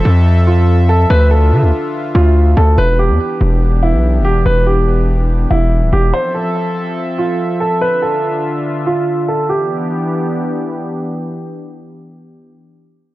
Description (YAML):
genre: hip hop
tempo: 143 BPM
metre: 4/4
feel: half-time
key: E phrygian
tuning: A4 = 440 Hz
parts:
  - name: dark grand piano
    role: melody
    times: 0.0-10.7 s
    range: E4 to C5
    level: -17 LUFS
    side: right 2 dB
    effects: low-pass filter, digital delay
  - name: warm analog pad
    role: sustained chords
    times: 0.0-12.5 s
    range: D3 to E5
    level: -20 LUFS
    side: left 1 dB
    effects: chorus, low-pass filter
  - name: distorted 808-style bass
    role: bass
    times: 0.0-6.1 s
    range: D1 to D3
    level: -11 LUFS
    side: equal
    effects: distortion
room: studio reverb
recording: dark, warm production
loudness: -12 LUFS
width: side -17 dB against mid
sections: 0.0-2.8 A section; 2.8-9.5 B section; 9.5-12.8 C section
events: filter sweep 2.8-9.5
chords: 0.0 Fmaj7; 1.1 Dmadd9; 2.8 Em7; 6.1 Fmaj7; 7.8 Dmadd9; 9.5 Em7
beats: 0.26 0.68 | 1.10 1.52 1.94 2.36 | 2.78 3.20 3.62 4.04 | 4.46 4.88 5.30 5.71 | 6.13 6.55 6.97 7.39 | 7.81 8.23 8.65 9.07 | 9.49 9.91 10.33 10.75 | 11.17 11.59 12.01 12.43